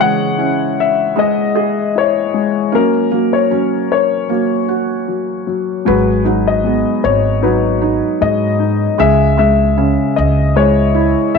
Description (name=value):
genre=acoustic folk-pop ballad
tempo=77 BPM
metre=4/4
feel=straight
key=unclear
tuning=A4 = 441 Hz
part: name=warm upright piano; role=melody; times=0.0-11.4 s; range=C#3 to F#5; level=-14 LUFS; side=left 10 dB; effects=none
part: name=felt-muted upright piano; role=arpeggios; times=0.0-11.4 s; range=E3 to G#4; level=-18 LUFS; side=right 17 dB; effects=none
part: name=upright bass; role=bass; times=5.9-11.4 s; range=G#1 to C#3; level=-17 LUFS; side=right 3 dB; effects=none
room=light reverb, small room ambience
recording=1960s-style stereo with parts hard left and right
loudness=-12 LUFS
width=side -5 dB against mid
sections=0.0-11.4 A section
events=none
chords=0.0 C#m; 2.7 F#; 5.9 G#m7; 9.0 C#m